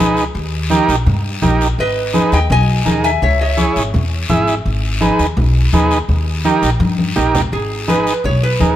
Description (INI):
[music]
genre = latin, cumbia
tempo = 167 BPM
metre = 4/4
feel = straight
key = G# harmonic minor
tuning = A4 = 443 Hz
[part]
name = overdriven combo organ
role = accompaniment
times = 0.0-8.8 s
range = D#4 to E5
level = -18 LUFS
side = right 3 dB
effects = none
[part]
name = upright bass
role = bass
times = 0.0-8.8 s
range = G#1 to G2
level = -17 LUFS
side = equal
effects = none
[part]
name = guiro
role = percussion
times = 0.0-8.8 s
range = none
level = -26 LUFS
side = left 5 dB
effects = none
[part]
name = congas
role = percussion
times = 0.3-8.8 s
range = none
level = -20 LUFS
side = left 2 dB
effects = none
[part]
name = metal-body resonator slide guitar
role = melody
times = 1.8-3.9, 7.5-8.8 s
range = G#4 to G#5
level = -18 LUFS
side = left 1 dB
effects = none
[sound]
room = light reverb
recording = none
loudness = -13 LUFS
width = side -12 dB against mid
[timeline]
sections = 0.0-7.5 A section; 7.5-8.8 B section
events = drum fill 6.8-7.5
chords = 0.4 D#; 1.8 G#m; 3.2 C#m; 4.7 G#m; 6.1 D#; 7.5 G#m